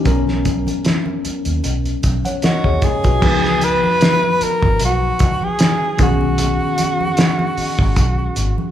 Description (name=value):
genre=lush 1970s-style soul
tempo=76 BPM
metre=4/4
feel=swing 54% on 16ths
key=unclear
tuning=A4 = 439 Hz
part: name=mellow tine electric piano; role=accompaniment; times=0.0-8.7 s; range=D#3 to F#5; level=-22 LUFS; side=left 3 dB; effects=medium stereo tremolo
part: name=vintage muted fingered electric bass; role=bass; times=0.1-8.5 s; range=G#1 to D#2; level=-21 LUFS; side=equal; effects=none
part: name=cloth-damped thuddy drum kit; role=drums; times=0.1-8.6 s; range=crash cymbal, hi-hat, kick drum, snare drum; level=-18 LUFS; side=equal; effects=none
part: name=congas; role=percussion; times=0.1-8.7 s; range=none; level=-28 LUFS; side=right 2 dB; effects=none
part: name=breathy tenor saxophone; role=melody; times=2.5-8.7 s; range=F#4 to B4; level=-19 LUFS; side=equal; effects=none
room=moderate large studio reverb, RT60 1.2 s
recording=band playing live in one room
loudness=-14 LUFS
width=side -11 dB against mid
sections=0.0-3.2 A section; 3.2-8.7 B section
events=none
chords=0.1 Bmaj13; 3.2 C#9; 6.0 B69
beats=| 0.06 0.85 1.64 2.43 | 3.22 4.01 4.80 5.59 | 6.39 7.18 7.97